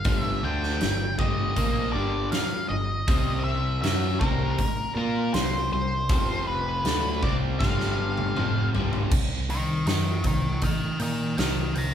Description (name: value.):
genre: blues rock power trio and southern rock.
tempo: 80 BPM.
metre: 4/4.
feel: straight.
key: unclear.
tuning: A4 = 441 Hz.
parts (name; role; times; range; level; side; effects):
octave-fuzz lead guitar; melody; 0.0-11.9 s; Bb4 to Bb5; -29 LUFS; left 1 dB; distortion.
growling picked electric bass; bass; 0.0-11.9 s; F1 to Bb2; -29 LUFS; equal; overdrive.
huge arena drum kit; drums; 0.0-11.9 s; crash cymbal, hi-hat, kick drum, snare drum, toms; -27 LUFS; equal; none.
overdriven electric guitar; riff; 0.1-9.1 s; F2 to Bb4; -29 LUFS; left 1 dB; spring reverb.
room: wet large studio reverb, RT60 1.1 s.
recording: band playing live in one room.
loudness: -23 LUFS.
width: side -9 dB against mid.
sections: 0.0-9.1 A section; 9.1-11.9 B section.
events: drum fill 7.6-9.1; lead electric guitar solo 9.1-11.9.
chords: 0.0 G5; 3.1 C5; 6.1 F5; 6.9 G5; 9.1 C5.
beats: | 0.06 0.81 1.57 2.32 | 3.08 3.84 4.59 5.35 | 6.10 6.86 7.61 8.37 | 9.12 9.87 10.63 11.38.